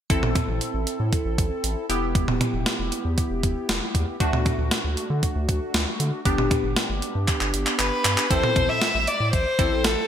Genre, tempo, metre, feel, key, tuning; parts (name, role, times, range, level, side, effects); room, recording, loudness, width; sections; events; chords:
synth-pop; 117 BPM; 4/4; straight; A4 = 441 Hz
funky polysynth comp; accompaniment; 0.1-10.0 s; A3 to A4; -27 LUFS; equal; chorus, phaser
round analog bass; bass; 0.1-10.0 s; E1 to D3; -27 LUFS; equal
clean 12-bit digital drum machine; drums; 0.1-10.0 s; handclaps, hi-hat, kick drum, snare drum, toms; -24 LUFS; equal; gated reverb
warm violin; melody; 7.8-10.1 s; A4 to E5; -23 LUFS; left 1 dB; ping-pong delay
moderate plate reverb, RT60 1.7 s, digital ambience; bright 1980s-style digital production; -21 LUFS; side -9 dB against mid
0.1-8.3 A section; 8.3-10.1 B section
drum fill 7.3-8.3
0.1 Am; 1.9 Em; 4.2 D; 6.3 G; 8.3 Am